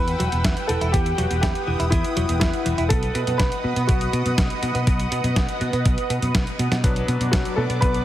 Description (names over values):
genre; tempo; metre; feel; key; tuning
italo disco; 122 BPM; 4/4; straight; unclear; A4 = 440 Hz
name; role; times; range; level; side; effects
warm baby grand piano; melody; 0.0-8.0 s; F#3 to B4; -26 LUFS; left 1 dB; ping-pong delay
lush unison pad; sustained chords; 0.0-8.0 s; B4 to E6; -28 LUFS; right 1 dB; chorus, phaser
direct-recorded clean electric guitar; arpeggios; 0.0-7.9 s; F#2 to E4; -30 LUFS; right 2 dB; low-pass filter, tape echo
fingered electric bass; bass; 0.0-8.0 s; E1 to B2; -24 LUFS; equal; none
detuned 8-bit digital drum machine; drums; 0.1-8.0 s; hi-hat, snare drum; -28 LUFS; equal; none
electronic kick drum; drums; 0.4-7.9 s; none; -22 LUFS; equal; none
clear electric grand piano; stabs; 6.8-8.0 s; F#3 to B4; -29 LUFS; left 3 dB; low-pass filter
room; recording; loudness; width
light reverb; heavily compressed radio sound, multiband compression; -19 LUFS; side -13 dB against mid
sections
0.0-6.8 A section; 6.8-8.0 B section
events
drum fill 6.3-6.8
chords
0.0 Emadd9; 2.9 B; 6.8 Bm